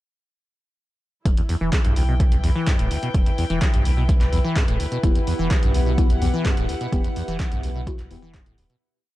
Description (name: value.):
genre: acid house.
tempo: 127 BPM.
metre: 4/4.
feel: straight.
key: E minor.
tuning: A4 = 441 Hz.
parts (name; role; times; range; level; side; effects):
acid bass, saw; riff; 1.3-8.8 s; D2 to E3; -26 LUFS; equal; tube saturation, lush chorus, sidechain pumping.
warm sub bass; bass; 1.3-8.7 s; D1 to B1; -23 LUFS; equal; tube saturation, sidechain pumping.
electronic kick drum; drums; 1.3-8.4 s; none; -20 LUFS; equal; overdrive.
punchy analog drum machine; drums; 1.3-8.8 s; handclaps, hi-hat; -32 LUFS; right 1 dB; overdrive.
warm studio string section; texture; 1.3-8.8 s; E4 to G5; -32 LUFS; left 2 dB; sidechain pumping.
string machine, full ensemble; sustained chords; 5.0-8.8 s; B3 to G4; -31 LUFS; equal; ensemble chorus, sidechain pumping.
deep mellow chord stab; stabs; 5.0-8.2 s; B3 to G4; -31 LUFS; left 4 dB; chorus, phaser, dub echo.
room: little or no reverb.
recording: dark, warm production.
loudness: -18 LUFS.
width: side -16 dB against mid.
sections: 1.3-8.8 groove.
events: fade-out 6.3-8.8.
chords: 1.3 Em.